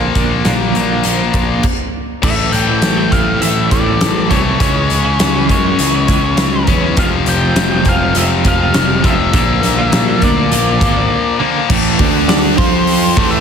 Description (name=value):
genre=quiet-loud alternative rock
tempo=102 BPM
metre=4/4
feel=straight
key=unclear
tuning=A4 = 442 Hz
part: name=twelve-string electric guitar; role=arpeggios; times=0.0-11.6 s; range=Bb2 to F4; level=-21 LUFS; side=right 4 dB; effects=tremolo
part: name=tight distorted guitar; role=riff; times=0.0-13.4 s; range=F2 to F4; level=-16 LUFS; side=left 8 dB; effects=distortion
part: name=fuzz picked electric bass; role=bass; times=0.0-13.4 s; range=F1 to F#2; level=-18 LUFS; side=right 1 dB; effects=overdrive
part: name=huge arena drum kit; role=drums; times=0.2-13.3 s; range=crash cymbal, hi-hat, kick drum, snare drum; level=-16 LUFS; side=equal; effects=none
part: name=octave-fuzz lead guitar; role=melody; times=2.2-13.4 s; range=C5 to G5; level=-19 LUFS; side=equal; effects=distortion, slapback echo
part: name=thick fuzz guitar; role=riff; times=11.7-13.4 s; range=A2 to F4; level=-16 LUFS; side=right 13 dB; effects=distortion, slapback echo
room=light reverb, studio reverb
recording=none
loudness=-11 LUFS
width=side -7 dB against mid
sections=0.0-2.2 A section; 2.2-11.7 B section; 11.7-13.4 C section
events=stop 1.6-2.2; break 11.1-11.7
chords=0.0 Bb; 2.2 Am; 4.6 C#m; 7.0 Fm; 9.3 Bb; 11.7 A5; 12.0 D5; 12.6 F5